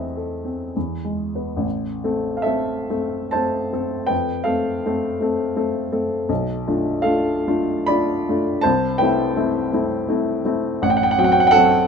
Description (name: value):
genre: classical, romantic nocturne for solo piano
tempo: 64-88 BPM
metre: 3/4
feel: rubato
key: A minor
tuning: A4 = 439 Hz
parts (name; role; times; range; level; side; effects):
- warm baby grand piano; solo; 0.0-11.9 s; A1 to B5; -18 LUFS; equal; none
room: light reverb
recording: minimal, uncompressed stereo recording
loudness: -18 LUFS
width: side -6 dB against mid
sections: 0.0-1.6 A section; 1.6-11.9 B section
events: none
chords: 0.0 Am/E; 0.8 E; 1.6 Am; 4.1 F; 6.3 Bm7b5; 8.6 Am/C; 10.8 F#dim/A